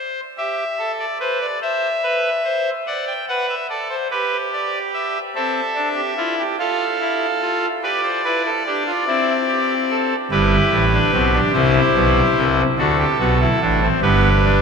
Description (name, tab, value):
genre	classical, baroque-style 4-part fugue for pipe organ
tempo	48 BPM (dotted quarters)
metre	6/8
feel	straight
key	C major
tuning	A4 = 442 Hz
part	pipe organ, trumpet	solo	0.0-14.6 s	G1 to G5	-16 LUFS	equal	none
room	wet cathedral reverb, RT60 6.8 s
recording	in a vast, echoing space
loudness	-16 LUFS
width	side -5 dB against mid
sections	0.0-14.6 A section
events	none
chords	0.4 G; 1.6 C; 2.9 D7; 4.1 G; 5.4 C; 6.6 F; 7.8 G7; 9.1 C; 10.3 G; 11.6 C; 12.8 D7; 14.0 G